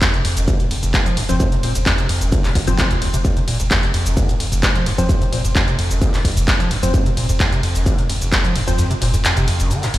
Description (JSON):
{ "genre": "driving peak-time techno", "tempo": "130 BPM", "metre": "4/4", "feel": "straight", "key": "unclear", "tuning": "A4 = 441 Hz", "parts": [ { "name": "overdriven acid bass", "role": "riff", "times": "0.0-10.0 s", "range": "F1 to F3", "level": "-22 LUFS", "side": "equal", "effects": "wide subtle chorus, sidechain pumping, ping-pong delay" }, { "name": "electronic kick drum", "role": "drums", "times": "0.0-8.4 s", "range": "none", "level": "-18 LUFS", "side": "equal", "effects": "distortion" }, { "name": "punchy analog drum machine", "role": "drums", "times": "0.0-10.0 s", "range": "handclaps, hi-hat, ride cymbal, shaker", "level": "-22 LUFS", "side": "equal", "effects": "sidechain pumping on hats, sidechain pumping on perc, sidechain pumping on cymbals" }, { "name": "saturated sub bass", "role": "bass", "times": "0.1-10.0 s", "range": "F1", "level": "-22 LUFS", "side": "equal", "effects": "overdrive, sidechain pumping, low-pass filter" }, { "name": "wavetable chord stab", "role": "stabs", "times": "1.3-8.9 s", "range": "F3 to C5", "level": "-26 LUFS", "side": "left 2 dB", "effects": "sidechain pumping, ping-pong delay" } ], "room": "light reverb", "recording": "played on a big sound system in a bare room, stone room reverb", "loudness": "-15 LUFS", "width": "side -15 dB against mid", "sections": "0.0-10.0 A section", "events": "kick drops out 8.8-10.0", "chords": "0.0 F5", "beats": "0.02 0.48 0.94 | 1.40 1.86 2.32 2.79 | 3.25 3.71 4.17 4.63 | 5.09 5.55 6.02 6.48 | 6.94 7.40 7.86 8.32 | 8.79 9.25 9.71" }